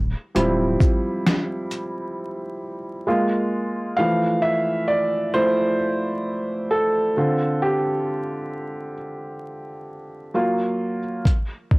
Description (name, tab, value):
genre	lo-fi hip hop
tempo	66 BPM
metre	4/4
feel	swing 61% on 16ths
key	F major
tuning	A4 = 440 Hz
part	soft dub sub bass	bass	0.0-0.8 s	D1	-24 LUFS	equal	none
part	felt-muted upright piano	accompaniment	0.3-11.3 s	D3 to F5	-21 LUFS	equal	low-pass filter, plate reverb
part	dusty soul sampler-style drum kit	drums	0.4-2.0, 11.3-11.8 s	hi-hat, kick drum, shaker, snare drum	-19 LUFS	equal	overdrive, cassette tape
room	light reverb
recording	home recording on cassette, vinyl crackle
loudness	-20 LUFS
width	side -25 dB against mid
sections	0.0-4.0 A section; 4.0-11.8 B section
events	felt piano solo 0.0-4.0, 4.0-11.8; break 2.2-4.0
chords	0.0 Dm11; 3.1 Fmadd11/Ab; 4.0 Fmaj7; 7.2 Dm7; 10.3 Gbmaj7; 11.3 N.C.